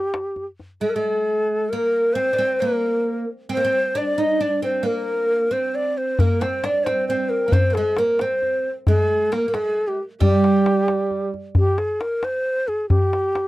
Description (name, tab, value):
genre	Persian modal ensemble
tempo	89 BPM (dotted quarters)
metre	6/8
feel	straight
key	unclear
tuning	A4 = 440 Hz
part	breathy reedy ney	melody	0.0-13.5 s	G4 to Eb5	-21 LUFS	equal	none
part	tombak	percussion	0.1-0.7, 6.2-13.5 s	none	-20 LUFS	left 1 dB	none
part	oud	second line	0.8-11.3 s	G3 to Eb4	-24 LUFS	right 2 dB	none
room	little or no reverb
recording	dry, close 1970s-style studio recording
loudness	-18 LUFS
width	side -17 dB against mid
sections	0.8-11.6 A section; 11.6-13.5 B section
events	none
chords	none